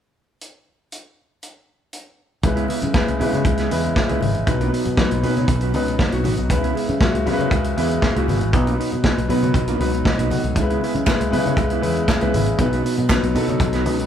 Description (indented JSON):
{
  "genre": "disco",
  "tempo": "118 BPM",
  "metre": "4/4",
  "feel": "straight",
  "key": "C# minor",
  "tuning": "A4 = 442 Hz",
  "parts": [
    { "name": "tight funk drum kit", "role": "drums", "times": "0.4-14.1 s", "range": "hi-hat, kick drum, snare drum", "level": "-22 LUFS", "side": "equal", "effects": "none" },
    { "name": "clear concert grand piano", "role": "accompaniment", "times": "2.4-14.1 s", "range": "B2 to F#5", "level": "-22 LUFS", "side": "left 2 dB", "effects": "none" },
    { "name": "mellow electric guitar", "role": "accompaniment", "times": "2.4-14.0 s", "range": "B3 to C#5", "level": "-28 LUFS", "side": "right 7 dB", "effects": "none" },
    { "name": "fingered electric bass", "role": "bass", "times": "2.4-14.1 s", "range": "G#1 to C#3", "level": "-23 LUFS", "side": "equal", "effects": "none" },
    { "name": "congas", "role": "percussion", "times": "2.4-14.0 s", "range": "none", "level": "-30 LUFS", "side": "left 5 dB", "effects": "none" },
    { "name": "group handclap", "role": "percussion", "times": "11.1-13.2 s", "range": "none", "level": "-34 LUFS", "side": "right 4 dB", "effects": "none" }
  ],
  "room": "moderate large studio reverb, RT60 1.2 s",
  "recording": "band playing live in one room",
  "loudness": "-17 LUFS",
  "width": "side -9 dB against mid",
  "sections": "0.4-2.4 A section; 2.4-14.1 B section",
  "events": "none",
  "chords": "0.4 N.C.; 2.4 C#m7; 4.5 B; 6.5 C#m7; 8.5 B; 10.6 C#m7; 12.6 B",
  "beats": "| 0.41 0.92 1.43 1.94 | 2.44 2.95 3.46 3.96 | 4.47 4.98 5.49 5.99 | 6.50 7.01 7.52 8.02 | 8.53 9.04 9.55 10.05 | 10.56 11.07 11.57 12.08 | 12.59 13.10 13.61"
}